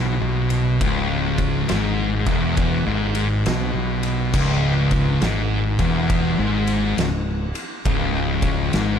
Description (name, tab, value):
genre	stoner and doom metal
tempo	68 BPM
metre	4/4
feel	swing 65% on 8ths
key	C# minor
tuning	A4 = 441 Hz
part	thick fuzz guitar	riff	0.0-9.0 s	C#2 to B2	-22 LUFS	left 7 dB	distortion
part	thick fuzz guitar	riff	0.0-9.0 s	C#2 to B2	-25 LUFS	right 11 dB	distortion
part	growling fingered electric bass	bass	0.0-9.0 s	C#1 to B1	-25 LUFS	equal	overdrive
part	oversized low-tuned drum kit	drums	0.5-9.0 s	crash cymbal, kick drum, ride cymbal, snare drum	-25 LUFS	equal	none
room	little or no reverb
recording	dark, warm production, lossy compression artefacts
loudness	-18 LUFS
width	side -8 dB against mid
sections	0.0-9.0 A section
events	none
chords	0.0 C#m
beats	| 0.81 1.69 2.58 3.46 | 4.34 5.22 6.10 6.98 | 7.86 8.73